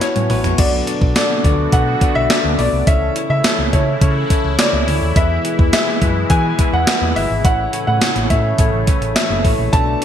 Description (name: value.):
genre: 1980s-style pop.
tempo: 105 BPM.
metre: 4/4.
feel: straight.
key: unclear.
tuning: A4 = 439 Hz.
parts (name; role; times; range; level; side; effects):
warm grand piano; melody; 0.0-10.0 s; C#5 to A5; -21 LUFS; equal; digital delay.
bell-like tine electric piano; accompaniment; 0.0-10.0 s; A2 to A5; -22 LUFS; left 6 dB; tube saturation, lush chorus.
direct-recorded clean electric guitar; riff; 0.0-10.0 s; E3 to B4; -27 LUFS; right 4 dB; wide subtle chorus.
gated 80s digital drum machine; drums; 0.0-10.0 s; crash cymbal, hi-hat, kick drum, snare drum, tambourine, toms; -16 LUFS; equal; gated reverb, gated reverb snare.
hollow-body short-scale fingered electric bass; bass; 0.2-9.9 s; F#1 to E3; -20 LUFS; equal; none.
sweeping resonant pad; sustained chords; 0.6-10.0 s; B2 to F#4; -25 LUFS; equal; chorus.
room: light reverb.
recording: bright 1980s-style digital production.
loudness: -13 LUFS.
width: side -9 dB against mid.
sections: 0.6-10.0 A section.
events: tine electric piano fill 0.0-0.6; drum fill 0.0-0.6.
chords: 0.0 F#7sus4; 0.6 Bm7; 2.9 A/C#; 5.2 E; 7.4 A.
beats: 0.02 | 0.59 1.16 1.73 2.30 | 2.87 3.44 4.02 4.59 | 5.16 5.73 6.30 6.87 | 7.45 8.02 8.59 9.16 | 9.73.